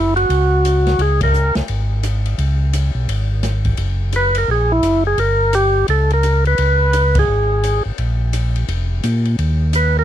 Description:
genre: soul jazz organ trio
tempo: 172 BPM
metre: 4/4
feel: swing 63% on 8ths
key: unclear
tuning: A4 = 438 Hz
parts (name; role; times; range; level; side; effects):
- percussive tonewheel organ; melody; 0.0-1.5, 4.2-10.0 s; Fb4 to Cb5; -16 LUFS; right 1 dB; slow rotary speaker
- mellow tonewheel organ; bass; 0.0-10.0 s; F1 to Bb2; -16 LUFS; equal; chorus vibrato, slow rotary speaker
- open jazz drum kit; drums; 0.2-9.8 s; hi-hat, kick drum, ride cymbal, snare drum; -26 LUFS; left 1 dB; none
room: little or no reverb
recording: dry, close 1970s-style studio recording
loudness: -14 LUFS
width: side -11 dB against mid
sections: 0.0-10.0 A section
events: band accent 1.2, 7.1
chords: 0.0 Gb5; 1.0 Db5; 3.8 Gb7; 5.2 Gdim; 6.6 Db5; 8.0 Bb5; 9.4 N.C.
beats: 0.30 0.65 | 0.99 1.34 1.69 2.04 | 2.39 2.74 3.09 3.44 | 3.79 4.13 4.49 4.83 | 5.18 5.53 5.88 6.23 | 6.58 6.93 7.28 7.63 | 7.98 8.33 8.68 9.03 | 9.38 9.73

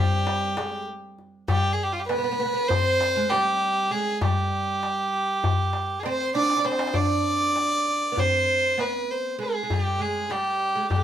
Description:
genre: Turkish makam ensemble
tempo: 198 BPM (eighths)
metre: 9/8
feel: straight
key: G makam hicaz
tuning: A4 = 438 Hz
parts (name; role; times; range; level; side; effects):
- rich violin; melody; 0.0-11.0 s; F4 to D5; -24 LUFS; equal; none
- oud; second line; 0.0-11.0 s; G3 to D4; -30 LUFS; right 4 dB; none
- darbuka; percussion; 0.1-11.0 s; none; -26 LUFS; left 2 dB; none
room: moderate studio reverb, RT60 0.8 s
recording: band playing live in one room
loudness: -22 LUFS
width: side -10 dB against mid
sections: 0.0-7.0 A section; 7.0-11.0 B section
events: drum fill 6.3-7.0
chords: none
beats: 0.27 0.58 0.88 1.19 | 1.49 1.79 2.10 2.40 2.70 3.01 3.31 3.62 3.92 | 4.22 4.53 4.83 5.13 5.44 5.74 6.04 6.35 6.65 | 6.96 7.26 7.56 7.87 8.17 8.48 8.78 9.08 9.39 | 9.69 9.99 10.30 10.60 10.91

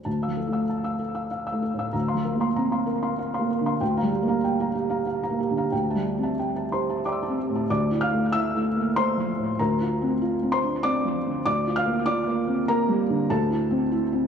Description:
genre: neoclassical minimalist piano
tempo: 96 BPM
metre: 3/4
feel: rubato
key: D minor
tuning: A4 = 441 Hz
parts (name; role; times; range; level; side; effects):
- felt-muted upright piano; solo; 0.0-14.3 s; D2 to F6; -22 LUFS; equal; dub echo
room: moderate spring reverb, RT60 1.6 s, small room ambience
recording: echo-heavy mix, studio ambience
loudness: -22 LUFS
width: side -7 dB against mid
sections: 0.1-7.7 A section; 7.7-14.3 B section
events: none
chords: 0.1 Dmadd9; 1.9 Bbadd9/D; 3.8 Gm7/D; 5.7 Am7/D; 7.7 Dmadd9; 9.6 Bbadd9/D; 11.5 Gm7/D; 13.3 Am/D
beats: | 0.06 0.69 1.32 | 1.94 2.56 3.19 | 3.81 4.43 5.06 | 5.72 6.38 7.04 | 7.69 8.33 8.96 | 9.59 10.21 10.84 | 11.46 12.08 12.69 | 13.30 13.92

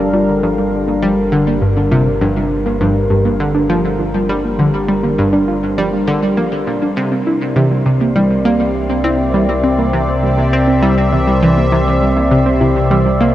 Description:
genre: ambient, sequencer-driven space music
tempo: 101 BPM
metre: 4/4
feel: straight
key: G dorian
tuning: A4 = 441 Hz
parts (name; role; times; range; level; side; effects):
- sweeping resonant pad; sustained chords; 0.0-13.3 s; C3 to F5; -16 LUFS; left 1 dB; chorus, phaser
- warbly dusty pluck; arpeggios; 0.0-13.2 s; E3 to F4; -20 LUFS; right 2 dB; chorus, auto-pan, tape echo
- round analog bass; bass; 0.0-13.3 s; G1 to C2; -23 LUFS; equal; none
- wind-like tuned noise texture; texture; 0.0-13.3 s; C4 to C5; -31 LUFS; equal; none
- analog pluck; riff; 0.1-13.3 s; G2 to C4; -16 LUFS; equal; chorus, cassette tape, tape echo
room: wet huge ambient reverb, RT60 7.5 s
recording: worn, warbling old tape, cassette tape, warbly pitch drift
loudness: -12 LUFS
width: side -13 dB against mid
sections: 0.0-13.3 A section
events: none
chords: 0.0 Gm7; 7.0 C7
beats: 0.43 1.02 1.62 | 2.21 2.81 3.40 4.00 | 4.59 5.18 5.78 6.37 | 6.97 7.56 8.15 8.75 | 9.34 9.94 10.53 11.12 | 11.72 12.31 12.91

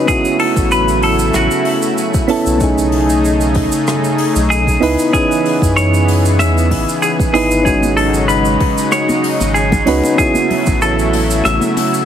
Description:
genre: sunset chillout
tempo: 95 BPM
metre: 4/4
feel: swing 54% on 16ths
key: C# minor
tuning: A4 = 440 Hz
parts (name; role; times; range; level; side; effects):
- semi-hollow electric guitar; melody; 0.0-12.1 s; F#4 to E5; -17 LUFS; left 2 dB; spring reverb, digital delay
- soft electric-piano-like synth keys; accompaniment; 0.0-12.1 s; G#3 to B4; -16 LUFS; right 2 dB; chorus, auto-pan, digital delay
- lush unison pad; sustained chords; 0.0-12.1 s; C#3 to G#4; -19 LUFS; equal; chorus
- downlifter; sound effects; 0.0-2.6 s; none; barely audible; none; none
- electronic kick drum; drums; 0.1-10.8 s; none; -18 LUFS; equal; none
- jazz brush drum kit; drums; 0.1-12.1 s; hi-hat, rim click, shaker; -25 LUFS; right 1 dB; none
- warm sub bass; bass; 0.6-11.6 s; G#1 to F#2; -17 LUFS; equal; none
- congas; percussion; 7.8-11.9 s; none; -22 LUFS; left 2 dB; none
room: moderate lush hall reverb, RT60 2.5 s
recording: heavily compressed radio sound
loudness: -11 LUFS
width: side -9 dB against mid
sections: 0.0-12.1 A section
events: none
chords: 0.1 A6; 2.6 B13; 4.8 C#m7; 7.7 G#7sus4; 10.2 A6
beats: | 0.08 0.71 1.34 1.97 | 2.60 3.23 3.87 4.50 | 5.13 5.76 6.39 7.02 | 7.66 8.29 8.92 9.55 | 10.18 10.81 11.45

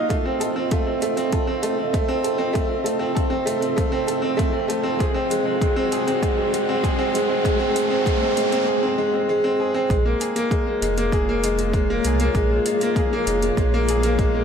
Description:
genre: piano and strings electronica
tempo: 98 BPM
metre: 4/4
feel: straight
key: unclear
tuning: A4 = 441 Hz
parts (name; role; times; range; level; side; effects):
- granular cloud pad; sustained chords; 0.0-14.4 s; Bb3 to Gb5; -29 LUFS; equal; built-in reverb, sidechain pumping
- clear upright piano; riff; 0.0-14.4 s; Ab3 to F5; -21 LUFS; equal; digital delay
- warm sub bass; bass; 0.1-14.4 s; F1 to C2; -24 LUFS; equal; sidechain pumping, high-pass filter
- electronic hi-hat; drums; 0.1-14.3 s; none; -32 LUFS; equal; overdrive, small room ambience
- electronic kick drum; drums; 0.1-14.3 s; none; -23 LUFS; equal; overdrive, small room ambience
- riser; sound effects; 2.7-8.7 s; none; -31 LUFS; right 1 dB; none
room: moderate concert hall reverb, RT60 2.1 s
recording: lossy compression artefacts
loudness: -19 LUFS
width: side -7 dB against mid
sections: 0.0-9.9 A section; 9.9-14.4 B section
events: build-up 0.0-9.9; filter sweep on ambient pad 0.0-9.9; riser 2.7-8.7; drop 9.9-14.4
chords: 0.1 F7; 5.0 Ab7; 9.9 Bbm7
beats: | 0.11 0.72 1.33 1.94 | 2.56 3.17 3.78 4.39 | 5.00 5.62 6.23 6.84 | 7.45 8.06 8.68 9.29 | 9.90 10.51 11.13 11.74 | 12.35 12.96 13.58 14.19

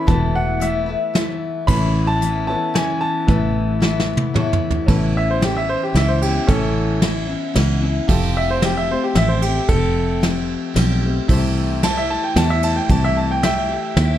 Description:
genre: folk rock and heartland rock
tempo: 112 BPM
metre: 3/4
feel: straight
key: A major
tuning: A4 = 438 Hz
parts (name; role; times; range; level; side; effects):
- bright grand piano; melody; 0.0-14.2 s; C#4 to B5; -22 LUFS; right 1 dB; none
- clear upright piano; accompaniment; 0.0-14.2 s; B3 to C#5; -32 LUFS; right 2 dB; none
- picked steel-string acoustic guitar; accompaniment; 0.0-14.2 s; E2 to G4; -23 LUFS; left 4 dB; none
- fingered electric bass; bass; 0.1-14.2 s; E1 to E2; -20 LUFS; right 1 dB; none
- soft brush drum kit; drums; 0.1-14.1 s; crash cymbal, hi-hat, kick drum, ride cymbal, snare drum, toms; -21 LUFS; equal; none
room: light reverb, studio reverb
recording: dark, warm production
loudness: -16 LUFS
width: side -12 dB against mid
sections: 0.0-4.9 A section; 4.9-14.2 B section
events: drum fill 3.8-4.9; grand piano solo 4.9-14.2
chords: 0.1 Esus4; 1.7 Aadd9; 8.1 Fadd9; 11.3 C6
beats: | 0.08 0.62 1.15 | 1.69 2.22 2.75 | 3.29 3.82 4.36 | 4.89 5.42 5.96 | 6.49 7.02 7.56 | 8.09 8.63 9.16 | 9.70 10.23 10.76 | 11.30 11.83 12.37 | 12.90 13.44 13.97

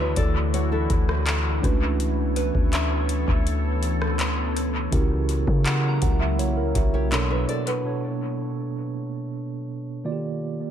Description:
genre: contemporary R&B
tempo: 82 BPM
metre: 4/4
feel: straight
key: B minor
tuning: A4 = 440 Hz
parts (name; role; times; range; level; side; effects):
- mellow tine electric piano; accompaniment; 0.0-10.7 s; B2 to F#5; -28 LUFS; right 3 dB; fast stereo tremolo, analog delay
- deep dark ambient pad; sustained chords; 0.0-7.8 s; E3 to C#5; -30 LUFS; equal; chorus, built-in reverb
- nylon-string guitar; arpeggios; 0.0-1.6, 6.9-8.0 s; E4 to E5; -30 LUFS; left 2 dB; analog delay
- warm 808-style bass; bass; 0.0-7.5 s; B1 to C#3; -24 LUFS; equal; none
- soft synth bell; texture; 0.0-7.3 s; B4 to A#5; -36 LUFS; right 1 dB; chorus, phaser, analog delay
- booming analog drum machine; drums; 0.2-7.8 s; handclaps, hi-hat, kick drum, rim click; -26 LUFS; equal; analog delay
room: little or no reverb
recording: echo-heavy mix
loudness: -22 LUFS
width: side -9 dB against mid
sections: 0.0-7.9 A section; 7.9-10.7 B section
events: none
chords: 0.0 Dmaj9; 1.6 Bm7; 4.9 F#7b9/C#; 7.1 Bm9; 7.9 Bm7; 10.0 D#maj9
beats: 0.54 1.27 | 2.00 2.73 3.46 4.20 | 4.93 5.66 6.39 7.12 | 7.85 8.59 9.32 10.05

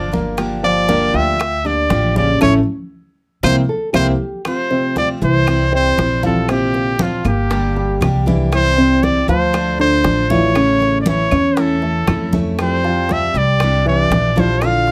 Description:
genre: latin, Cuban son and guajira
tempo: 118 BPM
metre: 4/4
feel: straight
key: unclear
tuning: A4 = 442 Hz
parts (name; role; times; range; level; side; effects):
- bright trumpet; melody; 0.0-14.9 s; F4 to F5; -20 LUFS; equal; none
- picked steel-string acoustic guitar; accompaniment; 0.0-14.9 s; C3 to G4; -26 LUFS; equal; none
- dark grand piano; arpeggios; 0.0-14.9 s; C3 to G5; -21 LUFS; equal; none
- upright bass; bass; 0.0-14.9 s; G1 to F2; -22 LUFS; equal; none
- bongos; percussion; 0.1-14.9 s; none; -27 LUFS; equal; none
- congas; percussion; 0.1-14.9 s; none; -26 LUFS; equal; none
- claves; percussion; 0.4-14.9 s; none; -31 LUFS; equal; none
- nylon-string guitar; second line; 3.7-4.4 s; G4 to A4; -26 LUFS; equal; none
room: light reverb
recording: close, detailed microphones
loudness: -16 LUFS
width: mono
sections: 0.0-4.5 A section; 4.5-14.9 B section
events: band accent 2.4-4.5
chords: 0.4 Gm7; 2.4 A; 3.4 C7; 4.5 F; 5.5 C; 6.5 Bbadd9; 7.5 Gm; 8.5 C; 9.5 Dm; 10.6 A; 12.6 Fadd9; 13.6 Cadd9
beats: | 0.38 0.89 1.40 1.91 | 2.42 2.93 3.44 3.95 | 4.46 4.96 5.47 5.98 | 6.49 7.00 7.51 8.02 | 8.53 9.04 9.54 10.05 | 10.56 11.07 11.58 12.09 | 12.59 13.10 13.61 14.12 | 14.62

